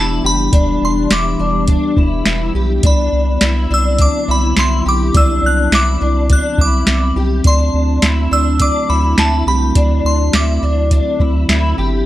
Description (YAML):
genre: dream pop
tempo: 104 BPM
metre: 4/4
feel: straight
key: unclear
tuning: A4 = 440 Hz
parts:
  - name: glassy synth bell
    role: melody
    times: 0.0-11.5 s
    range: A5 to F#6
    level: -19 LUFS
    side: equal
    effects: chorus, phaser, slapback echo
  - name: warbly tape-like pad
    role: sustained chords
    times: 0.0-12.1 s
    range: D3 to G4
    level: -20 LUFS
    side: equal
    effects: chorus, built-in reverb
  - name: fingerpicked twelve-string acoustic guitar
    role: arpeggios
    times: 0.0-12.1 s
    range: D4 to G4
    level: -21 LUFS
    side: left 2 dB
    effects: ensemble chorus, slapback echo
  - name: round analog bass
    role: bass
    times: 0.0-12.0 s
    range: E1 to D2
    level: -16 LUFS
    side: equal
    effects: none
  - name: soft vintage rhythm box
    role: drums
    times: 0.5-11.6 s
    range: hi-hat, kick drum, snare drum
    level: -14 LUFS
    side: equal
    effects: none
room: light reverb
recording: none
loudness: -12 LUFS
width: side -14 dB against mid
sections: 0.0-12.1 A section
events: none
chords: 0.0 Em7; 2.8 Cmaj9#11; 7.5 D9